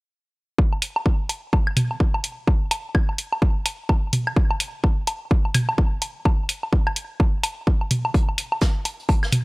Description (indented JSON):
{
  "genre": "minimal techno",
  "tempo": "127 BPM",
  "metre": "4/4",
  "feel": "swing 60% on 16ths",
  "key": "none",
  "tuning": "none",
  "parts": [
    { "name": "electronic kick drum", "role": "drums", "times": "0.6-9.2 s", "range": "none", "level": "-19 LUFS", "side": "equal", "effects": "none" },
    { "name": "electronic woodblock and toms", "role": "percussion", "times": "0.7-9.4 s", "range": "none", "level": "-25 LUFS", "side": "equal", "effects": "none" },
    { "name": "electronic hi-hat", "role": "drums", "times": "0.8-9.4 s", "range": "none", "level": "-24 LUFS", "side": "equal", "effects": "none" },
    { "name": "vintage brush drum kit", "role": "drums", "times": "8.1-9.4 s", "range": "hi-hat, snare drum", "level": "-34 LUFS", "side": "right 1 dB", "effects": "sidechain pumping on hats, high-pass filter on hats, high-pass filter on snare, high-pass filter on room" }
  ],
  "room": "studio ambience",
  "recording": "none",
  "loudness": "-20 LUFS",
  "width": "side -26 dB against mid",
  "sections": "0.6-9.4 A section",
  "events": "none",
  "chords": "none"
}